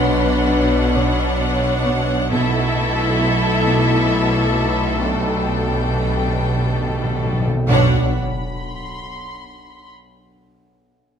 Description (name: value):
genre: cinematic, suspense film score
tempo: 67 BPM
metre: 3/4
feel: straight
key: B minor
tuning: A4 = 440 Hz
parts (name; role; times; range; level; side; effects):
- clear symphonic violin section; melody; 0.0-8.2 s; E5 to G5; -27 LUFS; left 2 dB; none
- rich studio violin section; second line; 0.0-8.2 s; A4 to C#5; -24 LUFS; left 2 dB; none
- clear symphonic viola section; accompaniment; 0.0-8.2 s; D4 to E4; -26 LUFS; right 1 dB; none
- glass harmonica; sustained chords; 0.0-8.2 s; B3 to A5; -30 LUFS; right 1 dB; none
- mellow French horn section; sustained chords; 0.0-8.1 s; A3 to G4; -24 LUFS; left 5 dB; none
- clear symphonic double bass section; bass; 0.0-8.2 s; B1; -23 LUFS; right 2 dB; none
- rich symphonic cello section; bass; 0.0-8.2 s; B2; -23 LUFS; right 2 dB; none
- overtone-sweeping drone; drone; 0.0-8.2 s; B1; -29 LUFS; equal; chorus, built-in reverb
- rich studio violin section; texture; 0.0-9.9 s; B5 to E6; -32 LUFS; left 4 dB; none
- clear symphonic cello section; riff; 0.1-7.5 s; B2; -30 LUFS; right 2 dB; none
- timpani; percussion; 2.3-8.1 s; B2; -24 LUFS; equal; none
- sub drop; sound effects; 7.7-10.4 s; none; -26 LUFS; equal; none
room: moderate scoring stage reverb, RT60 1.5 s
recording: none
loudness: -16 LUFS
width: side -8 dB against mid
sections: 0.0-7.7 A section; 7.7-10.4 B section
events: timpani fill 5.0-7.7; impact 7.7-10.4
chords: 0.0 Bmadd9; 2.3 Asus2/B; 5.0 Gsus2/B; 7.7 Bmadd9